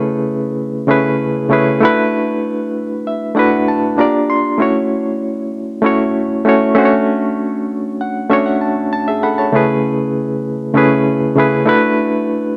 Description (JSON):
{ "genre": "soul", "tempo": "97 BPM", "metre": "4/4", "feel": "straight", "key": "unclear", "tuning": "A4 = 440 Hz", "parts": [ { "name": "barky reed electric piano", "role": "solo", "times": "0.0-12.6 s", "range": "C#3 to B#5", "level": "-15 LUFS", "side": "equal", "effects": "overdrive, fast tremolo" } ], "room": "light reverb", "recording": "none", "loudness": "-15 LUFS", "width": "mono", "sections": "0.0-12.6 A section", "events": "reed electric piano fill 2.7-4.6, 7.7-9.5", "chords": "0.0 Amaj9/C#; 1.8 E9sus4; 4.0 Gm7; 4.6 F#m7; 6.8 Dmaj7; 9.5 Amaj9/C#; 11.7 E9sus4" }